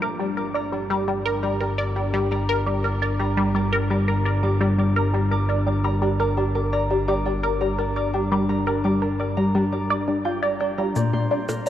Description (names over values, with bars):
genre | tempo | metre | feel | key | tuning
ambient, sequencer-driven space music | 85 BPM | 4/4 | straight | unclear | A4 = 439 Hz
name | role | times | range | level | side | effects
concert harp | arpeggios | 0.0-11.7 s | C4 to D6 | -29 LUFS | left 1 dB | auto-pan, ping-pong delay
resonant blip pluck | riff | 0.0-11.7 s | Bb2 to D5 | -22 LUFS | equal | phaser, ping-pong delay
fat analog bass | bass | 0.0-11.7 s | G1 to Bb1 | -25 LUFS | equal | none
cabasa and percussion blips | percussion | 11.0-11.7 s | none | -31 LUFS | right 2 dB | ping-pong delay
room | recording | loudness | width
moderate huge ambient reverb, RT60 8.0 s | worn, warbling old tape, cassette tape, warbly pitch drift | -20 LUFS | side -11 dB against mid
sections
0.0-11.7 A section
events
none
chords
0.0 Gm; 11.0 Bbsus2